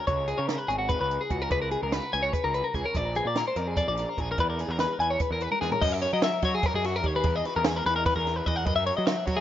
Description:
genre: math rock and midwest emo.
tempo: 294 BPM (eighths).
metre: 7/8.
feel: straight.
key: unclear.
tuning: A4 = 439 Hz.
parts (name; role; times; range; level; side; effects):
twelve-string electric guitar; arpeggios; 0.0-9.4 s; F#4 to G#5; -26 LUFS; left 3 dB; digital delay.
fuzz picked electric bass; bass; 0.1-9.4 s; G#1 to F#3; -31 LUFS; right 2 dB; overdrive.
compact cocktail drum kit; drums; 0.1-9.4 s; crash cymbal, hi-hat, kick drum, ride cymbal, snare drum, toms; -30 LUFS; right 2 dB; none.
room: light reverb.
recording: rough home demo mix, nothing above 7.5 kHz.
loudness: -24 LUFS.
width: side -11 dB against mid.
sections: 0.0-5.8 A section; 5.8-9.4 B section.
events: drum fill 5.5-5.8.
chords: 0.1 C#5; 3.0 A#7; 4.4 E; 5.8 F#7; 7.2 Emaj7(no3); 8.7 F#7(no3).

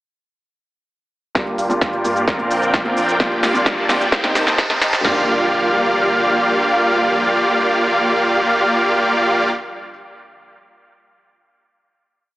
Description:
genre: EDM, festival progressive house.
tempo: 130 BPM.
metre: 4/4.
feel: straight.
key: G minor.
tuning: A4 = 440 Hz.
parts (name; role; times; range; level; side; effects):
felt-muted upright piano; accompaniment; 1.3-9.9 s; G2 to F4; -25 LUFS; equal; sidechain pumping, dub echo.
lush unison pad; sustained chords; 1.4-9.5 s; C3 to F4; -27 LUFS; equal; chorus, sidechain pumping.
dense compressed supersaw; riff; 1.4-9.5 s; Bb3 to A5; -16 LUFS; equal; cassette tape, sidechain pumping, low-pass filter, dub echo.
saturated sub bass; bass; 1.4-6.4 s; G1 to G2; -42 LUFS; equal; none.
big-room dance drum kit; drums; 1.4-5.2 s; crash cymbal, kick drum, snare drum, toms; -22 LUFS; equal; none.
big-room dance drum kit; drums; 1.4-5.0 s; hi-hat, shaker, snare drum; -21 LUFS; equal; none.
riser and impact; sound effects; 2.9-9.9 s; none; -29 LUFS; equal; none.
room: moderate lush hall reverb, RT60 2.3 s.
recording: high-pass filter, AM radio sound.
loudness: -14 LUFS.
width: side -16 dB against mid.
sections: 1.4-5.0 build; 5.0-8.7 final chord.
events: build-up 1.4-5.0; drum fill 1.4-5.0; filter sweep on supersaw synth 1.4-5.0; filter sweep 1.4-5.0.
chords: 1.4 Gm7; 2.3 Bbadd9; 3.2 Gm7/Bb; 4.1 Cm7; 5.0 Gm7.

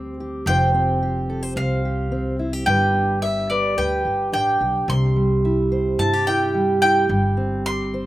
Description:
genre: acoustic folk duo or small band.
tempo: 108 BPM.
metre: 4/4.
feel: straight.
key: C major.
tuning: A4 = 440 Hz.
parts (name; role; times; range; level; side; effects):
mandolin; melody; 0.0-8.1 s; D5 to D6; -21 LUFS; equal; none.
fingerpicked steel-string acoustic guitar; accompaniment; 0.0-8.1 s; C3 to C5; -23 LUFS; right 1 dB; none.
upright bass; bass; 0.0-8.1 s; F1 to G2; -24 LUFS; equal; none.
room: little or no reverb.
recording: recorded outdoors, with no room sound.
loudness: -18 LUFS.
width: side -15 dB against mid.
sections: 0.0-8.1 A section.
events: none.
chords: 0.5 Fsus2; 2.7 G; 4.9 C; 7.1 Gsus4.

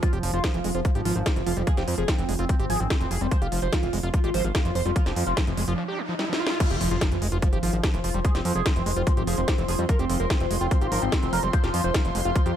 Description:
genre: psychedelic trance.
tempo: 146 BPM.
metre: 4/4.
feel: straight.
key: F harmonic minor.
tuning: A4 = 439 Hz.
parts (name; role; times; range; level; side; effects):
overdriven synth lead; melody; 0.0-12.5 s; F3 to C5; -30 LUFS; right 1 dB; distortion, chorus, phaser, sidechain pumping, digital delay.
bubbling stepped-filter texture; sustained chords; 0.0-12.6 s; F3; -34 LUFS; equal; chorus, built-in reverb, sidechain pumping.
screaming distorted acid line; riff; 0.0-12.5 s; E3 to G4; -32 LUFS; right 1 dB; distortion, chorus, auto-pan, cassette tape, sidechain pumping, digital delay.
electronic kick drum; drums; 0.0-12.4 s; none; -23 LUFS; equal; overdrive.
techno drum kit; drums; 0.0-12.5 s; crash cymbal, hi-hat, snare drum; -31 LUFS; equal; none.
fat analog bass; bass; 0.1-12.5 s; F1 to F2; -28 LUFS; equal; none.
riser and impact; sound effects; 4.8-8.2 s; none; -34 LUFS; equal; none.
airy breathy pad; texture; 7.3-12.6 s; F4 to C6; -33 LUFS; right 2 dB; chorus, sidechain pumping.
room: little or no reverb.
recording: none.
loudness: -22 LUFS.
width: side -10 dB against mid.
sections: 0.0-6.6 A section; 6.6-12.6 B section.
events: riser 4.8-6.6; break 5.8-6.6; drum fill 6.2-6.6; drop 6.6-12.6; impact 6.6-8.2.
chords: 0.0 F5.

